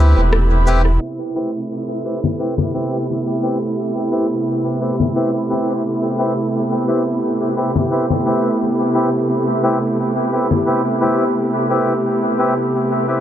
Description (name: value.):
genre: ambient dub.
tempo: 87 BPM.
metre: 4/4.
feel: swing 55% on 16ths.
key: A minor.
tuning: A4 = 440 Hz.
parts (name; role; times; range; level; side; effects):
dark studio string section; sustained chords; 0.0-13.2 s; C3 to G4; -18 LUFS; right 1 dB; none.
melodica; stabs; 0.0-13.2 s; C4 to B4; -21 LUFS; left 1 dB; low-pass filter, dub echo.
warm sub bass; bass; 0.0-1.0 s; E1 to D2; -12 LUFS; equal; tube saturation.
electronic rim click, cabasa and congas; drums; 0.3-10.6 s; none; -23 LUFS; left 4 dB; studio reverb, dub echo.
room: moderate spring reverb, RT60 2.5 s.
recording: echo-heavy mix, low-pass filter.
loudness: -16 LUFS.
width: side -11 dB against mid.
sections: 0.0-1.0 A section; 1.0-13.2 B section.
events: filter sweep 1.0-13.2.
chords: 0.0 Am9.